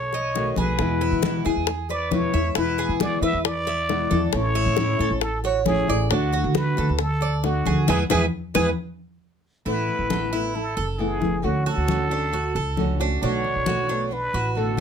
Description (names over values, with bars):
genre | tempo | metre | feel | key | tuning
latin, Cuban son and guajira | 135 BPM | 4/4 | straight | A major | A4 = 440 Hz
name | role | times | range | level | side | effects
trumpet with plunger mute | melody | 0.0-14.8 s | F#4 to E5 | -27 LUFS | equal | none
Cuban tres | arpeggios | 0.0-14.8 s | D4 to E5 | -28 LUFS | right 6 dB | none
upright bass | bass | 0.0-14.8 s | F#1 to E3 | -26 LUFS | right 1 dB | none
bongos | percussion | 0.1-8.7 s | none | -28 LUFS | left 10 dB | none
congas | percussion | 0.1-14.8 s | none | -29 LUFS | left 3 dB | none
nylon-string guitar | accompaniment | 0.3-14.8 s | B2 to F#4 | -26 LUFS | left 4 dB | none
room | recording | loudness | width
little or no reverb | close, detailed microphones | -20 LUFS | side -7 dB against mid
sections
0.0-9.7 A section; 9.7-14.8 B section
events
band accent 7.9-9.7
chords
0.0 B7; 0.8 E; 4.3 A; 6.1 D; 7.9 E; 9.7 Asus2; 11.4 Dmaj7; 13.2 Bm7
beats
0.35 | 0.80 1.24 1.68 2.12 | 2.57 3.01 3.45 3.89 | 4.34 4.78 5.22 5.67 | 6.11 6.55 6.99 7.44 | 7.88 8.32 8.77 9.21 | 9.66 10.10 10.55 10.99 | 11.44 11.88 12.33 12.77 | 13.22 13.66 14.11 14.55